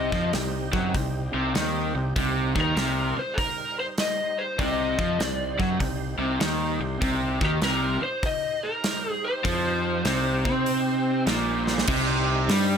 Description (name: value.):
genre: blues rock power trio and southern rock.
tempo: 99 BPM.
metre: 4/4.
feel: swing 65% on 8ths.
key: C minor.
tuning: A4 = 441 Hz.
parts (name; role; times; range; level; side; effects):
overdriven slide guitar; melody; 0.0-11.2 s; G4 to Eb5; -29 LUFS; left 2 dB; digital delay.
overdriven tonewheel organ; sustained chords; 0.0-12.8 s; G3 to Db5; -36 LUFS; right 5 dB; chorus vibrato, slow rotary speaker.
raw garage guitar; riff; 0.0-12.8 s; Bb2 to C4; -25 LUFS; equal; overdrive.
fuzz fingered electric bass; bass; 0.0-12.8 s; Bb1 to C3; -30 LUFS; equal; overdrive.
big rock drum kit; drums; 0.1-12.7 s; crash cymbal, hi-hat, kick drum, snare drum; -29 LUFS; equal; none.
room: light reverb.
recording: none.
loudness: -23 LUFS.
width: side -7 dB against mid.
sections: 0.0-11.9 A section.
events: drum fill 11.6-11.9.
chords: 0.0 Cm.